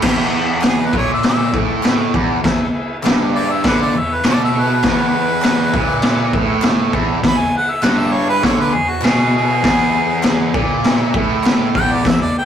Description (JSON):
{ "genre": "garage rock duo or trio", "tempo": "100 BPM", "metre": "4/4", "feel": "straight", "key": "E mixolydian", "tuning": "A4 = 439 Hz", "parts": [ { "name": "overdriven combo organ", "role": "sustained chords", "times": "0.0-12.4 s", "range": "G#4 to F#5", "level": "-28 LUFS", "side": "left 1 dB", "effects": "none" }, { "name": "fuzz guitar", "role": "riff", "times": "0.0-12.3 s", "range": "E2 to D3", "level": "-18 LUFS", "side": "right 1 dB", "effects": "distortion" }, { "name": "raw garage drum kit", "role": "drums", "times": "0.0-12.2 s", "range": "crash cymbal, kick drum, snare drum", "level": "-17 LUFS", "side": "left 1 dB", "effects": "none" }, { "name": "group handclap", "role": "percussion", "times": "0.6-11.6 s", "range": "none", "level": "-32 LUFS", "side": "left 4 dB", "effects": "none" }, { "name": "clear harmonica", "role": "melody", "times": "0.7-12.4 s", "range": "F#4 to B5", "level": "-19 LUFS", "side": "equal", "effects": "overdrive" } ], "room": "moderate studio reverb, RT60 0.5 s", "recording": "rough rehearsal-room recording, tube saturation", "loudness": "-13 LUFS", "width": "side -9 dB against mid", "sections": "0.0-12.4 A section", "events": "harmonica solo 0.0-12.4", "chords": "0.0 E" }